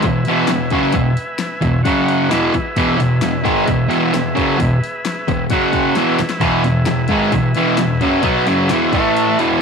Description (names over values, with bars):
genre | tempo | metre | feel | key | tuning
garage rock duo or trio | 132 BPM | 4/4 | straight | E major | A4 = 441 Hz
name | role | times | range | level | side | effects
combo organ | sustained chords | 0.0-9.6 s | E4 to G#5 | -24 LUFS | right 1 dB | none
fuzz guitar | riff | 0.0-9.6 s | E2 to B3 | -14 LUFS | equal | distortion
pop drum kit | drums | 0.0-9.5 s | hi-hat, kick drum, snare drum | -24 LUFS | left 3 dB | none
room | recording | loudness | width
moderate echo chamber reverb, RT60 1.3 s, digital ambience | 1960s-style stereo | -14 LUFS | side -5 dB against mid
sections
0.0-9.6 A section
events
drum fill 6.0-6.4; transistor combo organ fill 8.7-9.6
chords
0.0 E; 1.9 F#5; 2.3 E; 5.5 F#5; 6.0 E; 8.9 A5; 9.4 E